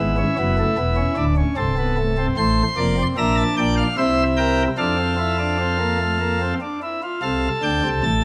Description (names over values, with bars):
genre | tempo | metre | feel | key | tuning
classical, baroque-style 4-part fugue for pipe organ | 75 BPM | 3/4 | straight | F major | A4 = 442 Hz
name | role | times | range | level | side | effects
pipe organ, principal chorus | solo | 0.0-8.2 s | C1 to C6 | -20 LUFS | equal | none
room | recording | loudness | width
moderate scoring stage reverb, RT60 1.9 s | none | -20 LUFS | mono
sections
0.0-2.4 A section; 2.4-7.2 B section; 7.2-8.2 C section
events
none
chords
0.0 G#dim; 1.6 Am/C; 2.4 F/A; 3.2 Bb; 4.0 C7; 4.8 F; 7.2 F/C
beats
0.78 1.57 | 2.37 3.18 3.98 | 4.79 5.59 6.41 | 7.23 8.04